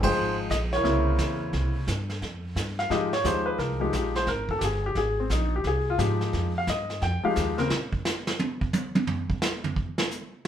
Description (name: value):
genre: jazz piano trio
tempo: 175 BPM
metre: 4/4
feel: swing 64% on 8ths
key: F minor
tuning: A4 = 440 Hz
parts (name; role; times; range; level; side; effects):
- warm baby grand piano; melody; 0.0-7.7 s; Db3 to G5; -26 LUFS; left 2 dB; none
- upright bass; bass; 0.0-7.9 s; G1 to Bb2; -29 LUFS; right 1 dB; none
- vintage brush drum kit; drums; 0.0-10.5 s; brushed snare drum, hi-hat, kick drum, ride cymbal, snare drum, toms; -30 LUFS; right 2 dB; none
room: wet studio reverb, RT60 0.8 s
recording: band playing live in one room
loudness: -24 LUFS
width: side -10 dB against mid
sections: 0.0-2.2 A section; 2.2-10.5 B section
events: band accent 0.0; grand piano solo 2.2-10.5; drum solo 7.7-10.5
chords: 0.0 Fm9; 0.8 C7b9; 2.2 Fm9; 7.7 N.C.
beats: 0.15 0.49 | 0.84 1.18 1.52 1.87 | 2.21 2.55 2.90 3.24 | 3.58 3.93 4.27 4.61 | 4.96 5.30 5.64 5.99 | 6.33 6.68 7.02 7.36 | 7.71 8.05 8.39 8.74 | 9.08 9.42 9.77 10.11 | 10.45